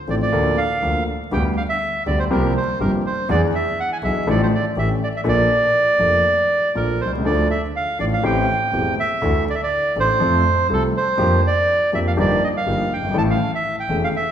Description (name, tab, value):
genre	tango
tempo	122 BPM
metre	4/4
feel	rubato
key	D minor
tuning	A4 = 440 Hz
part	bandoneon	melody	0.1-14.3 s	A4 to A5	-20 LUFS	right 2 dB	none
part	warm concert grand piano	accompaniment	0.1-14.1 s	E1 to A4	-21 LUFS	left 1 dB	none
part	clear double bass	bass	0.1-14.1 s	E1 to F2	-24 LUFS	equal	none
room	wet recital hall reverb, RT60 1.7 s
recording	recorded in a church or concert hall, vinyl crackle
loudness	-17 LUFS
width	side -9 dB against mid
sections	0.0-14.3 A section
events	none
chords	0.3 Bbmaj7/D; 1.3 G/D; 2.3 C7sus4; 3.3 E7; 4.3 Dm/A; 4.8 A7; 5.3 Bbmaj7; 7.2 Dm; 8.2 Am7; 9.2 Dsus2; 10.2 F; 11.2 Bb6/F; 12.2 Ebadd9/G; 13.1 A